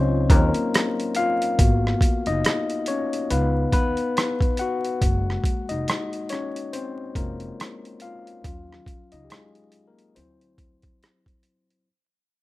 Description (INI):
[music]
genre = R&B, neo-soul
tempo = 70 BPM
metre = 4/4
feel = swing 58% on 16ths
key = unclear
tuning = A4 = 440 Hz
[part]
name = overdriven tine electric piano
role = accompaniment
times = 0.0-11.9 s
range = Gb3 to Gb5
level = -25 LUFS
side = left 3 dB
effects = none
[part]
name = upright bass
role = bass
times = 0.0-10.8 s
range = F1 to Eb2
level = -24 LUFS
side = equal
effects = none
[part]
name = boom bap sampler-style drum kit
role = drums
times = 0.3-11.9 s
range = hi-hat, kick drum, rim click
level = -22 LUFS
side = equal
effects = none
[sound]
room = digital ambience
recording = rough home demo mix, vinyl crackle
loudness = -21 LUFS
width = side -18 dB against mid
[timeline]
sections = 0.0-11.9 A section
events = fade-out 0.0-11.9; tine electric piano solo 0.0-11.9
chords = 0.0 Ebm7; 1.6 Abm7; 3.3 Db7; 5.0 Gbmaj7; 8.4 Ebm7; 10.2 D9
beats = 0.73 | 1.58 2.44 3.30 4.16 | 5.01 5.87 6.73 7.58 | 8.44 9.30 10.16 11.01